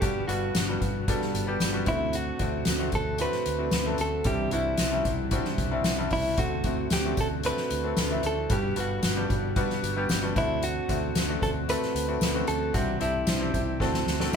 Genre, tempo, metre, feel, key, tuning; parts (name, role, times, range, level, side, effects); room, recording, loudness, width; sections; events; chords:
piano-driven pop; 113 BPM; 4/4; straight; D mixolydian; A4 = 439 Hz
direct-recorded clean electric guitar; melody; 0.0-14.0 s; E4 to B4; -31 LUFS; equal; ping-pong delay
bright upright piano; accompaniment; 0.0-14.4 s; G2 to A4; -31 LUFS; left 4 dB
fingerpicked plugged-in steel-string acoustic guitar; riff; 0.0-14.4 s; C3 to C5; -35 LUFS; right 8 dB
vintage muted fingered electric bass; bass; 0.0-14.4 s; G1 to D2; -33 LUFS; right 1 dB
soft-mallet drum kit; drums; 0.0-14.4 s; hi-hat, kick drum, snare drum; -29 LUFS; equal
tambourine; percussion; 0.6-14.4 s; -41 LUFS; left 6 dB
moderate studio ambience, RT60 0.5 s; band playing live in one room; -24 LUFS; side -6 dB against mid
0.0-14.4 A section
drum fill 13.8-14.4
0.0 Gmaj7; 1.9 D7; 4.3 Cadd9; 6.4 D7; 8.5 Gmaj7; 10.4 D7; 12.7 Cadd9; 13.8 D7